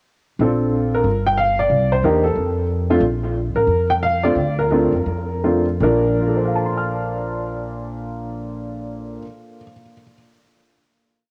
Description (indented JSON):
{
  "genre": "jazz piano trio",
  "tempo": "156-184 BPM",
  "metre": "4/4",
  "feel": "swing 63% on 8ths",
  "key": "Bb major",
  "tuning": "A4 = 438 Hz",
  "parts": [
    { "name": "warm upright piano", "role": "melody", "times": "0.4-10.1 s", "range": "Bb2 to F6", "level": "-21 LUFS", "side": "equal", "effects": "cassette tape, tape echo" },
    { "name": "upright bass", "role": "bass", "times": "0.4-9.2 s", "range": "G1 to F2", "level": "-25 LUFS", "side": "equal", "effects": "none" }
  ],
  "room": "moderate lush hall reverb, RT60 2.7 s",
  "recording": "home recording on cassette",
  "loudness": "-19 LUFS",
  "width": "mono",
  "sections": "0.4-5.8 A section; 5.8-8.9 final chord",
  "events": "slowing down 3.0-5.8",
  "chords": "0.4 Bbmaj7; 1.1 Gm7; 1.7 Cm7; 2.4 F; 3.0 Bb; 5.8 Bbmaj7",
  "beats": "| 0.40 0.72 1.05 1.38 | 1.71 2.03 2.36 2.69 | 3.02 3.35 3.68 4.01 | 4.36 4.70 5.06 5.43 | 5.81 6.19 6.58 6.96 | 7.35 7.73 8.12 8.50"
}